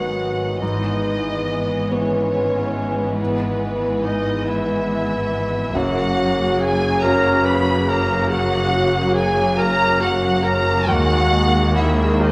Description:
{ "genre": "cinematic", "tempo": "47 BPM (dotted quarters)", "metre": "6/8", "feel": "rubato", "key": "unclear", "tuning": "A4 = 436 Hz", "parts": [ { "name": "muted studio violin section", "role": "melody", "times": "0.0-12.3 s", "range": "B4 to B5", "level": "-26 LUFS", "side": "equal", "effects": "none" }, { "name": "mellow clarinet", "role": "second line", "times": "0.0-12.3 s", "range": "B3 to B4", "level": "-26 LUFS", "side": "equal", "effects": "none" }, { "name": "muted studio violin section", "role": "second line", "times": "0.0-12.3 s", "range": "G#3 to B3", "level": "-32 LUFS", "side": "equal", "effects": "none" }, { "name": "muted studio viola section", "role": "accompaniment", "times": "0.0-12.3 s", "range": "C#3 to G#3", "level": "-30 LUFS", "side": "equal", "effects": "none" }, { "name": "warm concert grand piano", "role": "accompaniment", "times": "0.0-12.3 s", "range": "D#2 to C#5", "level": "-27 LUFS", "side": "equal", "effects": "none" }, { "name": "dark French horn section", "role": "sustained chords", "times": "0.0-12.3 s", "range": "E3 to C#5", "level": "-28 LUFS", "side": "equal", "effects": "none" }, { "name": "muted studio cello section", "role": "bass", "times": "0.0-12.3 s", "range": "D#2 to G#2", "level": "-29 LUFS", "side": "equal", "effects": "none" }, { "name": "muted studio double bass section", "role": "bass", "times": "0.0-12.3 s", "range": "F#1 to D#2", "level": "-28 LUFS", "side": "equal", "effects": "none" } ], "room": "wet scoring stage reverb, RT60 1.9 s", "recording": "none", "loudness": "-19 LUFS", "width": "mono", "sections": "0.0-12.3 A section", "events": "none", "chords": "0.0 G#m7; 0.6 E/G#; 5.7 F#; 10.9 D#sus4" }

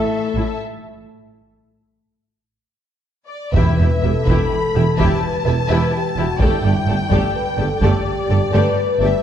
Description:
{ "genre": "cinematic, epic orchestral film score", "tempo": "84 BPM (dotted quarters)", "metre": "12/8", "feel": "straight", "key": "E minor from 3.5 s", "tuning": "A4 = 440 Hz", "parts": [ { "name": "clear symphonic violin section", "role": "melody", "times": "0.0-9.2 s", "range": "A4 to B5", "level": "-26 LUFS", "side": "left 4 dB", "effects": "none" }, { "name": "warm symphonic violin section", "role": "second line", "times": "0.0-9.1 s", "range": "A4 to A5", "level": "-27 LUFS", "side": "left 2 dB", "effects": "none" }, { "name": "clear symphonic viola section", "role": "accompaniment", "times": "0.0-9.1 s", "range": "A3 to E5", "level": "-26 LUFS", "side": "right 2 dB", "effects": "none" }, { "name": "mellow French horn section", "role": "sustained chords", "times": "0.0-9.2 s", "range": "A3 to B4", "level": "-23 LUFS", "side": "left 3 dB", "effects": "none" }, { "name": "rich symphonic cello section", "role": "bass", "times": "0.4-9.1 s", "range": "E2 to A2", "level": "-23 LUFS", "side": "right 2 dB", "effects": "none" }, { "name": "rich symphonic double bass section", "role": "bass", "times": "0.4-9.1 s", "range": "E1 to A1", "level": "-22 LUFS", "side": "right 2 dB", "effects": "none" }, { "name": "mellow tuba", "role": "bass", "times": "3.5-9.1 s", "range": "E1 to G1", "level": "-24 LUFS", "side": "right 2 dB", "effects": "none" }, { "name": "taiko ensemble", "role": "drums", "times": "3.5-8.3 s", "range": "none", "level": "-22 LUFS", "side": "equal", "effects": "none" }, { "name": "timpani", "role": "percussion", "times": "3.5-4.2 s", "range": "E2", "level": "-23 LUFS", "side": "left 1 dB", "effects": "none" } ], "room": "wet scoring stage reverb, RT60 1.6 s", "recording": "dark, warm production", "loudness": "-15 LUFS", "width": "side -9 dB against mid", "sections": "0.0-3.5 A section; 3.5-9.2 B section", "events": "break 0.6-3.5", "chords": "0.0 A5; 0.6 N.C.; 3.5 Em; 6.4 Gsus2" }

